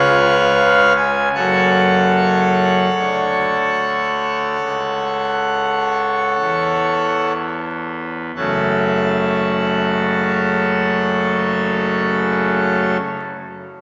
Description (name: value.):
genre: classical, chorale-style piece for pipe organ.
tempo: 30-42 BPM.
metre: 4/4.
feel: rubato.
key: F# minor.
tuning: A4 = 440 Hz.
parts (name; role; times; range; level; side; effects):
pipe organ, full organ; solo; 0.0-13.0 s; F#1 to G#5; -17 LUFS; equal; none.
room: wet church reverb, RT60 3.3 s.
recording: heard from further back in the room, vinyl crackle, small speaker sound.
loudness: -17 LUFS.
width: mono.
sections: 0.0-8.4 A section; 8.4-13.8 B section.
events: slowing down 0.0-8.4.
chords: 0.0 C#7; 1.3 F#m.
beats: | 1.34 2.92 4.60 6.39 | 8.36 10.35 12.36.